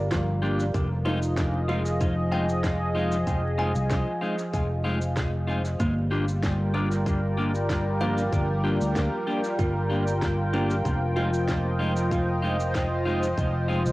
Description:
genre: ambient dub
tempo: 95 BPM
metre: 4/4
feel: straight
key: F dorian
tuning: A4 = 439 Hz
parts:
  - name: warm analog pad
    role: sustained chords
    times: 0.0-13.9 s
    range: F3 to G5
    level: -28 LUFS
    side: equal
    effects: chorus, cassette tape
  - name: kalimba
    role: arpeggios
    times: 0.0-12.9 s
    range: F3 to Ab5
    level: -35 LUFS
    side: equal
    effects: cassette tape, dub echo
  - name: fingered electric bass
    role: bass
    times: 0.0-13.9 s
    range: F1 to D2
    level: -27 LUFS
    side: equal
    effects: none
  - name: electronic kick drum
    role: drums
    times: 0.1-13.5 s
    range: none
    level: -28 LUFS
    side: equal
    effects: studio reverb, cassette tape
  - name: electronic snare drum and cabasa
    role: drums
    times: 0.1-13.9 s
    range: none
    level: -37 LUFS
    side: equal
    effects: studio reverb, cassette tape, dub echo
  - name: clean electric guitar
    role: stabs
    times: 0.4-13.8 s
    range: Ab3 to G4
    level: -32 LUFS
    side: left 1 dB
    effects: vintage 12-bit sampler grit, cassette tape, dub echo
room: light reverb, digital ambience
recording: home recording on cassette, vinyl crackle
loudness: -23 LUFS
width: side -19 dB against mid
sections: 0.0-13.9 A section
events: none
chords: 0.0 Gm7; 0.7 Fm7; 5.8 Gm7; 10.9 Fm7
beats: 0.11 | 0.75 1.38 2.01 2.64 | 3.27 3.90 4.54 5.17 | 5.80 6.43 7.06 7.69 | 8.32 8.96 9.59 10.22 | 10.85 11.48 12.11 12.75 | 13.38

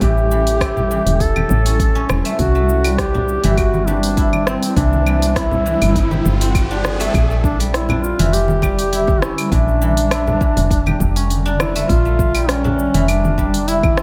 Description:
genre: organic downtempo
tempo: 101 BPM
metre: 4/4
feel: straight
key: unclear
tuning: A4 = 440 Hz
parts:
  - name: mellow duduk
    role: melody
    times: 0.0-14.0 s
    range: C4 to A4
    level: -24 LUFS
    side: equal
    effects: tape echo, slapback echo
  - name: granular cloud pad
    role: sustained chords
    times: 0.0-14.0 s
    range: D3 to Bb5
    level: -28 LUFS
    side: equal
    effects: built-in reverb, sidechain pumping
  - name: guzheng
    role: arpeggios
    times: 0.0-14.0 s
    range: E3 to G4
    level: -24 LUFS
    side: equal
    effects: tape echo, slapback echo
  - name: woody FM bass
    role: bass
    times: 0.0-14.0 s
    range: E1 to C2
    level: -21 LUFS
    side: equal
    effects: none
  - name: deep house drum kit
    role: drums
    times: 0.0-14.0 s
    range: claves, hi-hat, rim click, shaker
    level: -27 LUFS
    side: equal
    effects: studio reverb
  - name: electronic kick drum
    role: drums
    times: 0.0-13.9 s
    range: none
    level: -22 LUFS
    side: equal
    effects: studio reverb
  - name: congas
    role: percussion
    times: 0.0-13.9 s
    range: none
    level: -27 LUFS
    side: equal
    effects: none
  - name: riser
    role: sound effects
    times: 4.9-7.1 s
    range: none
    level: -32 LUFS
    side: equal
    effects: slapback echo
room: moderate concert hall reverb, RT60 2.1 s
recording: big arena sound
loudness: -16 LUFS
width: mono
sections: 0.0-7.1 A section; 7.1-14.0 B section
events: riser 4.9-7.1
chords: 0.0 A7; 2.4 Cmaj7; 7.1 Bb6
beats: | 0.02 0.61 1.20 1.80 | 2.39 2.99 3.58 4.17 | 4.77 5.36 5.96 6.55 | 7.14 7.74 8.33 8.93 | 9.52 10.12 10.71 11.30 | 11.90 12.49 13.09 13.68

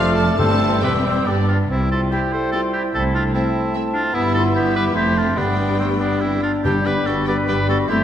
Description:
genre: quick classical-period movement for symphony orchestra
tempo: 135-152 BPM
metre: 3/4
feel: rubato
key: C major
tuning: A4 = 440 Hz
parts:
  - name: warm studio violin section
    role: melody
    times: 0.0-8.0 s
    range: C5 to A5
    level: -31 LUFS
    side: left 1 dB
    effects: none
  - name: bright clarinet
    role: second line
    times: 0.0-8.0 s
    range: A3 to B4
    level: -28 LUFS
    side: left 2 dB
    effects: none
  - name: clear oboe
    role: second line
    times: 0.0-8.0 s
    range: C4 to D5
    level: -24 LUFS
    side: right 1 dB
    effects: none
  - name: hollow concert flute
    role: second line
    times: 0.0-8.0 s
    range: G5 to F6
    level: -28 LUFS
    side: left 2 dB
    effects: none
  - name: warm studio violin section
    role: second line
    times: 0.0-8.0 s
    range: B3 to A4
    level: -30 LUFS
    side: left 2 dB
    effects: none
  - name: mellow bassoon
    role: accompaniment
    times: 0.0-8.0 s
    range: G3 to C4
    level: -26 LUFS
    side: right 1 dB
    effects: none
  - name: warm studio viola section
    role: accompaniment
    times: 0.0-8.0 s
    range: D3 to C4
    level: -27 LUFS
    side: equal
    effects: none
  - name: mellow French horn section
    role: sustained chords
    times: 0.0-8.0 s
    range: F3 to E4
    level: -24 LUFS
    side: left 2 dB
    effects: none
  - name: warm studio cello section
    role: bass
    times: 0.0-8.0 s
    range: E2 to C3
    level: -25 LUFS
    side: right 1 dB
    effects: none
  - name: warm studio double bass section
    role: bass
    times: 0.0-8.0 s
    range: E1 to C2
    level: -26 LUFS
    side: right 2 dB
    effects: none
  - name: timpani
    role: percussion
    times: 0.4-1.0, 5.4-7.2 s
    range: G2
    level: -27 LUFS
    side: left 1 dB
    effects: none
room: wet scoring stage reverb, RT60 1.7 s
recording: none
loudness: -16 LUFS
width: side -10 dB against mid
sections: 0.0-1.7 A section; 1.7-8.0 B section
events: none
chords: 0.4 C/G; 1.3 G; 1.7 C; 2.9 Am/C; 4.1 Em/G; 5.0 F; 5.4 G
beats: | 0.39 0.83 1.27 | 1.70 2.12 2.53 | 2.94 3.35 3.74 | 4.14 4.55 4.95 | 5.37 5.80 6.22 | 6.65 7.07 7.49 | 7.90

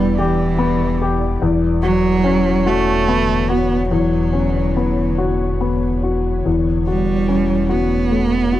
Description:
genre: neoclassical piano and strings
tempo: 48 BPM (dotted quarters)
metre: 6/8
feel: rubato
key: unclear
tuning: A4 = 440 Hz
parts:
  - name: rich cello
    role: second line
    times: 0.0-8.6 s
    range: E3 to B3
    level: -19 LUFS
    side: right 5 dB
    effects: none
  - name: dark baby grand piano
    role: accompaniment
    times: 0.0-8.6 s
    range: E2 to G4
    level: -18 LUFS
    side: left 4 dB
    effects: none
  - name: ethereal airy pad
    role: sustained chords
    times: 0.0-8.6 s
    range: D3 to D5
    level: -27 LUFS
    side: right 1 dB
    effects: ensemble chorus, built-in reverb
  - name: sub bass with octave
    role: bass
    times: 0.0-8.6 s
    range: E1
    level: -22 LUFS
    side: equal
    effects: none
room: little or no reverb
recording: dry, close 1970s-style studio recording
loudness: -15 LUFS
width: side -13 dB against mid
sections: 0.0-8.6 A section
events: none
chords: 0.0 Em7; 1.4 Bmadd9/E; 6.5 F#m7/E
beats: 0.17 | 1.41 2.65 | 3.91 5.18 | 6.46 7.70

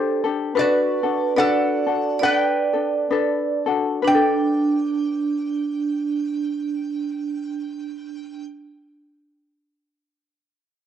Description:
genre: Hawaiian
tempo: 62-77 BPM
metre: 4/4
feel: swing 59% on 8ths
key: G major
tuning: A4 = 440 Hz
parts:
  - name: lap resonator guitar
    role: melody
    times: 0.0-8.4 s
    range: F#4 to G5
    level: -23 LUFS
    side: right 1 dB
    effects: cassette tape
  - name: vibraphone with hard mallets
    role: second line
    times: 0.0-8.4 s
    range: D4 to D5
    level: -23 LUFS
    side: right 6 dB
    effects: cassette tape
  - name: ukulele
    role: accompaniment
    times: 0.0-8.6 s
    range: D4 to C5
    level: -22 LUFS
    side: left 6 dB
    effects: cassette tape
room: moderate spring reverb, RT60 2.0 s, small room ambience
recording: home recording on cassette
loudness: -19 LUFS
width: side -9 dB against mid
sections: 0.0-4.1 A section; 4.1-7.9 B section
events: slowing down 0.0-4.1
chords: 0.0 D7sus4; 0.6 Gmaj9; 4.1 Gadd9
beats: | 0.56 1.38 2.22 3.11 | 4.05 5.03 6.00 6.97

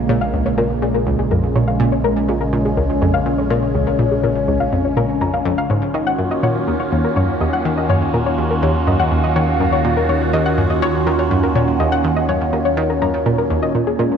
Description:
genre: ambient, sequencer-driven space music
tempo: 123 BPM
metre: 4/4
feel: straight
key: unclear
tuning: A4 = 445 Hz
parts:
  - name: phased analog pad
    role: sustained chords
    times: 0.0-14.2 s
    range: Db3 to Gb4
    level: -19 LUFS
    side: equal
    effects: phaser, chorus
  - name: analog drone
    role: bass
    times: 0.0-14.2 s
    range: Bb1 to Eb2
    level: -24 LUFS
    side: equal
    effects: chorus
  - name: wind-like tuned noise texture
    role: texture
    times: 0.0-14.2 s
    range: Bb3 to Db5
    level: -32 LUFS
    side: left 2 dB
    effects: none
  - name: soft round pluck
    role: arpeggios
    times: 0.1-14.1 s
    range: Ab4 to Bb5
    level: -22 LUFS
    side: left 3 dB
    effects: chorus, auto-pan, tape echo
  - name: analog pluck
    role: riff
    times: 0.1-14.1 s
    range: Db2 to Eb3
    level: -20 LUFS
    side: equal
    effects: chorus, tape echo
room: moderate plate reverb, RT60 3.2 s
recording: cassette tape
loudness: -15 LUFS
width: side -7 dB against mid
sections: 0.0-14.2 A section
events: none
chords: 0.0 Bbm7; 5.9 Ebm7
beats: | 0.09 0.58 1.06 1.55 | 2.04 2.53 3.02 3.50 | 3.99 4.48 4.97 5.46 | 5.94 6.43 6.92 7.41 | 7.89 8.38 8.87 9.36 | 9.85 10.33 10.82 11.31 | 11.80 12.29 12.77 13.26 | 13.75

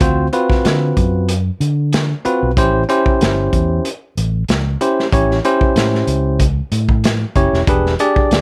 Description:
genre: straight-eighth soul blues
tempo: 94 BPM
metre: 4/4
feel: straight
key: A mixolydian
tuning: A4 = 439 Hz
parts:
  - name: bell-like tine electric piano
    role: accompaniment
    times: 0.0-8.4 s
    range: C4 to D5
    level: -18 LUFS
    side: equal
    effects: none
  - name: fingered electric bass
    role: bass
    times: 0.0-8.4 s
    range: E1 to D3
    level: -20 LUFS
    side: equal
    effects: none
  - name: crunchy breakbeat drum kit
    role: drums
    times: 0.0-8.4 s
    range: hi-hat, kick drum, snare drum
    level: -20 LUFS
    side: equal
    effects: none
room: light reverb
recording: none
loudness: -16 LUFS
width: mono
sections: 0.0-8.4 A section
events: none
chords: 0.0 D7#9; 2.6 A7#9; 7.7 E7#9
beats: | 0.01 0.65 1.29 1.93 | 2.57 3.21 3.85 4.49 | 5.12 5.76 6.40 7.04 | 7.68 8.32

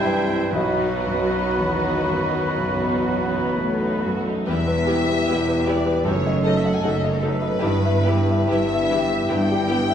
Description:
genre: classical, romantic movement for piano and orchestra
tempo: 57-81 BPM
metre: 4/4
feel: rubato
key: E minor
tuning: A4 = 440 Hz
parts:
  - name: clear concert grand piano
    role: melody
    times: 0.0-9.9 s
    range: B1 to A5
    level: -24 LUFS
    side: left 1 dB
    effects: none
  - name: warm studio violin section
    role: melody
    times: 0.0-9.9 s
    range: A4 to G#5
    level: -28 LUFS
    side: left 4 dB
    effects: none
  - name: clear oboe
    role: second line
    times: 0.0-4.1 s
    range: B4 to C5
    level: -30 LUFS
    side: equal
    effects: none
  - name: large flute ensemble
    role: second line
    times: 0.0-4.1 s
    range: G5 to B5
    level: -31 LUFS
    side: equal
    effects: none
  - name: warm clarinet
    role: second line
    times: 0.0-4.1 s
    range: E4 to F#4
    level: -29 LUFS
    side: right 1 dB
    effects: none
  - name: warm symphonic violin section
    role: second line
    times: 0.0-9.8 s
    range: G3 to E5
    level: -32 LUFS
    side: equal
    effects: none
  - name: mellow bassoon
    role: accompaniment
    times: 0.0-4.1 s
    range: F#3 to G3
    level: -30 LUFS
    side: right 2 dB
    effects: none
  - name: rich symphonic viola section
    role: accompaniment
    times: 0.0-9.7 s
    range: E3 to F#4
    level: -31 LUFS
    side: right 1 dB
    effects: none
  - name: dark French horn section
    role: sustained chords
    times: 0.0-9.9 s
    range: D#3 to G4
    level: -26 LUFS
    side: left 2 dB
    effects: none
  - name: dark symphonic double bass section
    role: bass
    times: 0.5-9.9 s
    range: E1 to B1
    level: -28 LUFS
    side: right 3 dB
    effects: none
  - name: rich symphonic cello section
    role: bass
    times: 0.5-9.9 s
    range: E2 to B2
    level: -29 LUFS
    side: right 3 dB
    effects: none
room: wet recital hall reverb, RT60 1.6 s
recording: heard from further back in the room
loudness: -19 LUFS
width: side -8 dB against mid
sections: 0.0-4.5 A section; 4.5-9.9 B section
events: none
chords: 0.0 C; 0.5 B; 4.5 Em; 6.1 D#dim/F#; 7.6 Em/G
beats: | 0.54 1.58 2.58 3.56 | 4.48 5.28 6.05 6.83 | 7.62 8.49 9.29

